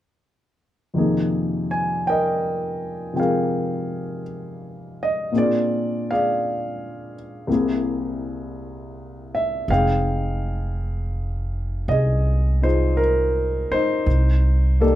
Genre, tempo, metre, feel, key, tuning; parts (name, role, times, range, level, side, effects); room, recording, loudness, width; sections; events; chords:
jazz ballad; 55 BPM; 4/4; swing 68% on 8ths; F dorian, F minor from 9.7 s; A4 = 440 Hz
warm grand piano; accompaniment; 0.9-15.0 s; C2 to Ab5; -22 LUFS; left 1 dB
upright bass; bass; 9.7-15.0 s; F1 to C2; -20 LUFS; equal
light reverb; -20 LUFS; side -13 dB against mid
1.0-9.7 A section; 9.7-15.0 B section
1.0 Fm11; 5.3 Bb7; 7.5 Caug7; 9.7 Fm9; 14.1 Cm9